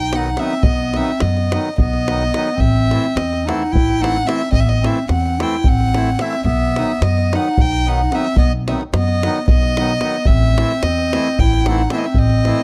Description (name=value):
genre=balkan folk, Balkan wedding band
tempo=219 BPM (eighths)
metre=7/8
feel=straight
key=A dorian sharp4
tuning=A4 = 439 Hz
part: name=warm violin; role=melody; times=0.0-12.6 s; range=D#5 to G5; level=-24 LUFS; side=equal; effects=none
part: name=mellow clarinet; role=second line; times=0.0-12.6 s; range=B3 to E4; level=-24 LUFS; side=equal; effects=tape echo
part: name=upright bass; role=bass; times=0.0-12.5 s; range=A1 to F#2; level=-21 LUFS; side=equal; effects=none
part: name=accordion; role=accompaniment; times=0.1-12.6 s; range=D#3 to E4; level=-27 LUFS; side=equal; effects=none
part: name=davul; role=percussion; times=0.1-12.6 s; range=none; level=-21 LUFS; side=equal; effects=none
room=light reverb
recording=none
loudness=-17 LUFS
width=mono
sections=0.0-12.6 A section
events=speeding up 0.0-12.6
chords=0.0 B; 2.6 Am; 6.5 B; 10.3 Am